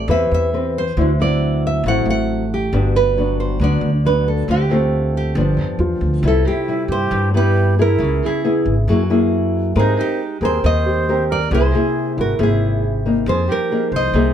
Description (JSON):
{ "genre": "bossa nova", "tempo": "137 BPM", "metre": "4/4", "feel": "straight", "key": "G major", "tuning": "A4 = 440 Hz", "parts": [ { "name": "nylon-string guitar", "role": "melody", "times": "0.0-14.3 s", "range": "G4 to F#5", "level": "-22 LUFS", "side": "right 2 dB", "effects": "none" }, { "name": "nylon-string guitar", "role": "accompaniment", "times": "0.0-14.3 s", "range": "G2 to B4", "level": "-20 LUFS", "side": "left 2 dB", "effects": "none" }, { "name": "warm grand piano", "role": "accompaniment", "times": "0.0-1.0, 4.7-13.4 s", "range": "Fb4 to A4", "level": "-28 LUFS", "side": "equal", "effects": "none" }, { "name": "upright bass", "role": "bass", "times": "0.0-14.3 s", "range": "G1 to Ab2", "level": "-18 LUFS", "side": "equal", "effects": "none" }, { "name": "reedy concert flute", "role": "second line", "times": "6.2-14.3 s", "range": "Eb4 to C5", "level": "-24 LUFS", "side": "right 4 dB", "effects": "none" } ], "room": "light reverb", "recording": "dark, warm production", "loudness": "-15 LUFS", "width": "side -9 dB against mid", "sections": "0.0-6.2 A section; 6.2-14.3 B section", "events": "none", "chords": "0.0 Am9 (rootless); 1.0 D9; 2.7 Gmaj7; 4.5 Dm7; 5.4 G7; 6.2 Cmaj7; 8.0 Dbm7; 8.9 F#9; 9.8 Abmaj9; 11.5 C7b13; 13.3 Fm11" }